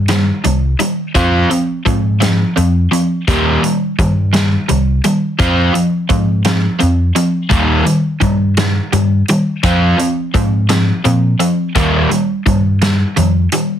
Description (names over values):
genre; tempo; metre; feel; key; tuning
indie rock; 57 BPM (dotted quarters); 6/8; straight; F minor; A4 = 440 Hz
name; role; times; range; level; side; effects
crunchy overdriven guitar; riff; 0.0-13.8 s; Eb3 to F4; -14 LUFS; equal; none
hollow-body short-scale picked electric bass; bass; 0.0-13.5 s; C2 to Bb2; -14 LUFS; equal; none
loose indie drum kit; drums; 0.1-13.7 s; hi-hat, kick drum, snare drum; -19 LUFS; equal; none
room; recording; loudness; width
light reverb; heavily compressed radio sound, multiband compression; -12 LUFS; side -10 dB against mid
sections
0.0-13.8 A section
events
none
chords
0.0 Eb6; 1.1 Fm; 3.3 Eb6; 5.4 Fm; 7.5 Eb; 9.6 Fm; 11.8 Eb